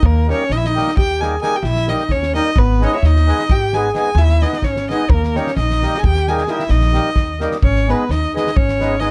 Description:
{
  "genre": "balkan folk, Balkan wedding band",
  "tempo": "260 BPM (eighths)",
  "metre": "11/8",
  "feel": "straight",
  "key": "Eb phrygian dominant",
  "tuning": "A4 = 440 Hz",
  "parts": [
    { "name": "rich violin", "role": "melody", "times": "0.0-9.1 s", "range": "Bb4 to Ab5", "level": "-23 LUFS", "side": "equal", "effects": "none" },
    { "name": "mellow clarinet", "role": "second line", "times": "0.0-9.1 s", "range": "Bb3 to Ab4", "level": "-25 LUFS", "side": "equal", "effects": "slapback echo" },
    { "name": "upright bass", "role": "bass", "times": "0.0-9.1 s", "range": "Ab1 to Eb2", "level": "-19 LUFS", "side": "equal", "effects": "none" },
    { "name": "loose indie drum kit", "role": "percussion", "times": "0.0-9.1 s", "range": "kick drum, snare drum", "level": "-23 LUFS", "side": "equal", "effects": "none" },
    { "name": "mellow accordion", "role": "accompaniment", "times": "0.3-9.1 s", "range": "G3 to Ab4", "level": "-24 LUFS", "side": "equal", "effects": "none" }
  ],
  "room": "little or no reverb",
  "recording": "dark, warm production",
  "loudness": "-16 LUFS",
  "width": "mono",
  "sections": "0.0-7.6 A section; 7.6-9.1 B section",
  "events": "none",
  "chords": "0.0 Eb; 2.6 Abm; 5.1 Eb; 7.6 Abm",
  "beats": "| 0.02 0.25 0.48 0.71 0.94 1.17 1.40 1.63 1.86 2.10 2.33 | 2.56 2.79 3.02 3.25 3.48 3.71 3.94 4.17 4.40 4.63 4.86 | 5.09 5.33 5.55 5.79 6.02 6.25 6.48 6.71 6.94 7.17 7.40 | 7.63 7.86 8.09 8.32 8.55 8.78 9.01"
}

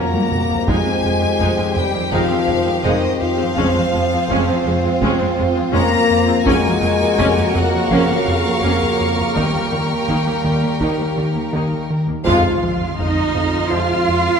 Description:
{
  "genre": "cinematic, suspense film score",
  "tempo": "83 BPM",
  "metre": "4/4",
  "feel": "straight",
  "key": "F minor",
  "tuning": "A4 = 440 Hz",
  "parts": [
    { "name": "rich chamber violin section", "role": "melody", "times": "0.0-14.4 s", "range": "Eb5 to Bb5", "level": "-25 LUFS", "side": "left 4 dB", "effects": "none" },
    { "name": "warm studio violin section", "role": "second line", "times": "0.0-14.4 s", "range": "F4 to F5", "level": "-24 LUFS", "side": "right 1 dB", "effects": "none" },
    { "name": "rich studio viola section", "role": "accompaniment", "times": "0.0-14.4 s", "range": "Gb3 to F4", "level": "-24 LUFS", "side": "right 1 dB", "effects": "none" },
    { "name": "mellow French horn section", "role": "sustained chords", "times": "0.0-14.0 s", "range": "Db3 to F4", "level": "-22 LUFS", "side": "left 5 dB", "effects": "none" },
    { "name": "warm trombone section", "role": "sustained chords", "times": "0.0-13.9 s", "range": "C3 to C4", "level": "-25 LUFS", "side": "right 4 dB", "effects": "none" },
    { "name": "rubbery square bass", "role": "riff", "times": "0.0-14.3 s", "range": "F2 to Eb4", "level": "-23 LUFS", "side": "right 1 dB", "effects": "none" },
    { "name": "rich studio double bass section", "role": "bass", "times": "0.0-14.4 s", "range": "F1 to F2", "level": "-28 LUFS", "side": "right 2 dB", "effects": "none" },
    { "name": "warm studio cello section", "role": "bass", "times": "0.0-14.4 s", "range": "Eb2 to F4", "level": "-25 LUFS", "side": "right 3 dB", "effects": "none" },
    { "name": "analog drone", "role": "drone", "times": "0.0-14.4 s", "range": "Eb2 to F2", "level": "-27 LUFS", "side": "right 1 dB", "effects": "chorus" },
    { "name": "warm studio violin section", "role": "texture", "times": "0.0-0.3, 6.5-14.4 s", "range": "Db5 to F6", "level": "-29 LUFS", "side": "left 2 dB", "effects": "none" },
    { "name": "taiko ensemble", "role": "drums", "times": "0.1-13.9 s", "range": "none", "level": "-28 LUFS", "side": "equal", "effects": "none" },
    { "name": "concert harp", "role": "texture", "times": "2.1-14.4 s", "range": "F4 to F6", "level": "-31 LUFS", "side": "left 6 dB", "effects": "none" },
    { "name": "impact", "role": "sound effects", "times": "12.5-14.4 s", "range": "none", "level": "-31 LUFS", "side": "equal", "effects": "none" }
  ],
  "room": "wet scoring stage reverb, RT60 1.8 s",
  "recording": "none",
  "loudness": "-15 LUFS",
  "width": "side -6 dB against mid",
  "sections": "0.0-12.2 A section; 12.2-14.4 B section",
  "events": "drum fill 0.0-0.7; band accent 12.2-13.0; impact 12.2-14.4",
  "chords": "0.0 Gbmaj7/F; 0.7 Abmaj7/F; 3.6 Dbmaj7/F; 6.5 Gbmaj7/F; 9.4 Eb; 12.2 Fm",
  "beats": "| 0.68 1.40 2.13 2.85 | 3.57 4.29 5.02 5.74 | 6.46 7.19 7.91 8.63 | 9.36 10.08 10.80 11.52 | 12.25 12.97 13.69"
}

